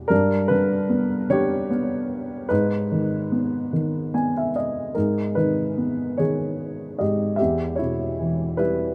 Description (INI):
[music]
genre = classical, lyrical solo piano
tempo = 50 BPM (dotted quarters)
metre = 6/8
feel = rubato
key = G# harmonic minor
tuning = A4 = 439 Hz
[part]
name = dark baby grand piano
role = solo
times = 0.0-8.9 s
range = E2 to G#5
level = -23 LUFS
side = equal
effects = none
[sound]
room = moderate huge ambient reverb, RT60 7.5 s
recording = none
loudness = -23 LUFS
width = mono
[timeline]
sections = 0.0-4.9 A section; 4.9-8.9 A section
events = grand piano fill 3.7-4.9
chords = 0.1 G; 2.5 G#m; 7.4 Em